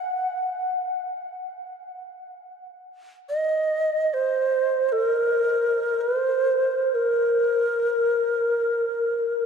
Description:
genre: world meditative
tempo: free time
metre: none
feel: none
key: unclear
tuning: A4 = 441 Hz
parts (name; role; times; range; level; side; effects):
- mellow hollow Native American-style cedar flute; solo; 0.0-9.5 s; Bb4 to Gb5; -22 LUFS; equal; ping-pong delay
room: wet huge ambient reverb, RT60 7.2 s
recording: dark, warm production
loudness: -21 LUFS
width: side -6 dB against mid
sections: 0.0-9.5 A section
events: none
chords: none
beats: free time

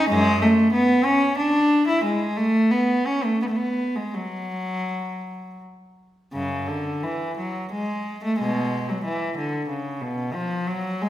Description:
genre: classical, baroque-style suite movement for unaccompanied cello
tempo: 80-94 BPM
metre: 3/4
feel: rubato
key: F# minor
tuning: A4 = 441 Hz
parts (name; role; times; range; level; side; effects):
- warm cello; solo; 0.0-11.1 s; F#2 to E4; -21 LUFS; equal; none
room: wet recital hall reverb, RT60 1.3 s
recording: recorded in a church or concert hall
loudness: -21 LUFS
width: side -13 dB against mid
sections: 0.0-6.3 A section; 6.3-11.1 B section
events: none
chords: none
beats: | 0.09 0.73 1.39 | 2.05 2.72 3.41 | 4.12 4.85 5.59 | 6.33 7.02 7.72 | 8.40 9.05 9.70 | 10.34 11.01

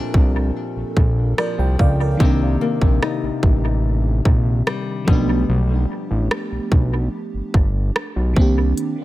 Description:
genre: contemporary R&B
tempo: 73 BPM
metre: 4/4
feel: straight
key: C dorian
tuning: A4 = 440 Hz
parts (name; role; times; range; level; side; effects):
- FM electric piano with soft pad layer; accompaniment; 0.0-9.0 s; Eb3 to G5; -24 LUFS; right 1 dB; chorus, tremolo, dub echo
- nylon-string guitar; arpeggios; 0.0-6.1 s; Bb2 to Eb4; -26 LUFS; left 6 dB; dub echo
- fat analog bass; bass; 0.0-8.7 s; G1 to Db2; -19 LUFS; equal; none
- trap drum kit; drums; 0.1-9.0 s; hi-hat, kick drum, rim click; -18 LUFS; equal; none
room: digital ambience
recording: echo-heavy mix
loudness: -16 LUFS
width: side -16 dB against mid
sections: 0.0-9.0 A section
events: none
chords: 0.0 Bbmaj7; 2.2 Cm7; 5.1 G7; 8.4 Cm7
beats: 0.56 1.38 | 2.20 3.02 3.85 4.67 | 5.49 6.31 7.13 7.95 | 8.78

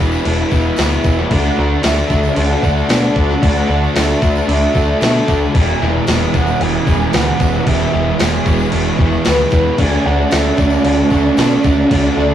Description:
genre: rock, shoegaze and dream pop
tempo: 113 BPM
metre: 4/4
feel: straight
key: D lydian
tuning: A4 = 435 Hz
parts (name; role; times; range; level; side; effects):
- mellow horn-like synth lead; melody; 0.0-12.3 s; B4 to G#5; -22 LUFS; right 2 dB; chorus
- evolving wavetable pad; sustained chords; 0.0-12.3 s; F#4 to C#6; -26 LUFS; equal; ensemble chorus, built-in reverb
- overdriven semi-hollow guitar; riff; 0.0-12.3 s; E2 to G#4; -20 LUFS; left 3 dB; none
- overdriven semi-hollow guitar; riff; 0.0-12.3 s; E2 to D4; -20 LUFS; equal; none
- growling picked electric bass; bass; 0.0-12.3 s; E1 to B2; -18 LUFS; equal; overdrive
- tambourine; percussion; 0.1-12.3 s; none; -36 LUFS; right 3 dB; none
- crisp 8-bit digital drum machine; drums; 0.3-12.0 s; crash cymbal, kick drum, snare drum; -18 LUFS; equal; none
- overdriven semi-hollow guitar; riff; 5.5-12.3 s; E2 to F#4; -18 LUFS; right 5 dB; none
room: wet stone room reverb, RT60 1.1 s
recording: rough rehearsal-room recording, tube saturation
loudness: -12 LUFS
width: side -10 dB against mid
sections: 0.0-12.3 A section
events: none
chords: 0.0 E; 1.3 Dadd9; 5.5 E; 9.8 Dadd9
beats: 0.25 0.78 | 1.31 1.84 2.37 2.90 | 3.43 3.96 4.49 5.01 | 5.54 6.08 6.61 7.13 | 7.67 8.20 8.73 9.26 | 9.79 10.32 10.85 11.38 | 11.91

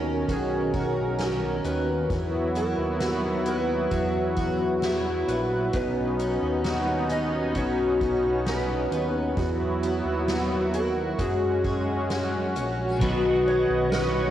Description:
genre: dream pop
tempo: 66 BPM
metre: 4/4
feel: straight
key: B major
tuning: A4 = 441 Hz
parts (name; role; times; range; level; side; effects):
- electric slide guitar; melody; 0.0-14.3 s; F#4 to D#5; -32 LUFS; right 4 dB; cassette tape, tape echo
- warm analog pad; sustained chords; 0.0-14.3 s; D#3 to C#6; -28 LUFS; right 1 dB; chorus, tremolo, cassette tape
- picked twelve-string acoustic guitar; arpeggios; 0.0-14.3 s; F#2 to G#4; -28 LUFS; left 2 dB; lush chorus, cassette tape, tape echo
- fat analog bass; bass; 0.0-14.3 s; A#1 to F#2; -31 LUFS; equal; none
- soft-mallet drum kit; drums; 0.3-14.1 s; crash cymbal, hi-hat, kick drum, ride cymbal, snare drum, tambourine; -34 LUFS; equal; cassette tape
- twelve-string electric guitar; accompaniment; 13.0-14.3 s; B2 to F#4; -28 LUFS; right 2 dB; harmonic tremolo, ensemble chorus, cassette tape
- drifting glass-harmonics texture; texture; 14.0-14.3 s; C#5; -32 LUFS; right 4 dB; chorus, built-in reverb, cassette tape
room: moderate lush hall reverb, RT60 2.8 s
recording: home recording on cassette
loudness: -23 LUFS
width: side -11 dB against mid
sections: 0.0-13.0 A section; 13.0-14.3 B section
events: none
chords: 0.0 Badd9; 2.1 Esus2; 5.7 Badd9; 9.4 Esus2; 11.2 F#sus2; 13.0 Badd9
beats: 0.28 1.19 | 2.10 3.01 3.92 4.83 | 5.74 6.65 7.56 8.47 | 9.38 10.29 11.19 12.10 | 13.01 13.92

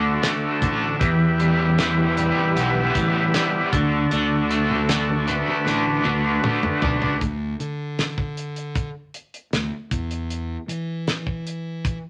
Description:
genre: psychedelic rock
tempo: 78 BPM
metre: 4/4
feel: straight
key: unclear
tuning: A4 = 440 Hz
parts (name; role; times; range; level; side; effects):
- combo organ; sustained chords; 0.0-7.2 s; D4 to B4; -27 LUFS; equal; none
- crunchy overdriven guitar; riff; 0.0-7.2 s; E2 to D4; -24 LUFS; equal; harmonic tremolo
- fuzz fingered electric bass; bass; 0.0-12.0 s; A1 to E3; -30 LUFS; equal; overdrive
- damped 70s drum kit; drums; 0.2-12.0 s; hi-hat, kick drum, snare drum, toms; -28 LUFS; equal; none
- congas; percussion; 0.6-7.0 s; none; -37 LUFS; equal; none
room: wet studio reverb, RT60 0.8 s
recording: none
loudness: -22 LUFS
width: mono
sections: 0.0-7.2 A section; 7.2-12.1 B section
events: drum fill 5.7-7.2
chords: 0.0 D; 1.0 Em; 3.7 D; 7.2 N.C.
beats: 0.23 | 1.01 1.78 2.56 3.33 | 4.11 4.88 5.66 6.43 | 7.21 7.98 8.75 9.53 | 10.30 11.07 11.84

